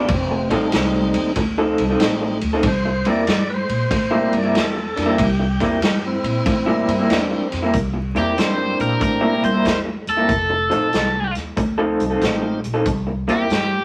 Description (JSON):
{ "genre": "electric blues shuffle", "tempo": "94 BPM", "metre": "4/4", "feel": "swing 66% on 8ths", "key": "C mixolydian", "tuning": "A4 = 439 Hz", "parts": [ { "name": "tonewheel organ", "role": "accompaniment", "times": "0.0-12.6 s", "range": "G3 to D5", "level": "-26 LUFS", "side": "equal", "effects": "slow rotary speaker, overdrive" }, { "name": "electric guitar through a small old amp", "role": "riff", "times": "0.0-13.5 s", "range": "C3 to A4", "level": "-22 LUFS", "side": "equal", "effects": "tremolo" }, { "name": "upright bass", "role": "bass", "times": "0.0-13.8 s", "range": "F1 to Bb2", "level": "-26 LUFS", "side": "equal", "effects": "none" }, { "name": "swinging big-band drum kit", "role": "drums", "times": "0.1-13.7 s", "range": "hi-hat, kick drum, ride cymbal, snare drum", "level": "-26 LUFS", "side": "equal", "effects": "none" }, { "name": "overdriven electric guitar", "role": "melody", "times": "8.2-13.8 s", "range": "G4 to C5", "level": "-23 LUFS", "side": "equal", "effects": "none" } ], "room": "moderate small room reverb, RT60 0.5 s", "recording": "vinyl crackle", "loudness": "-19 LUFS", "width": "mono", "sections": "0.0-7.7 A section; 7.7-13.8 B section", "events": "none", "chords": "0.1 F7; 2.6 C7; 10.3 F7; 12.9 C7" }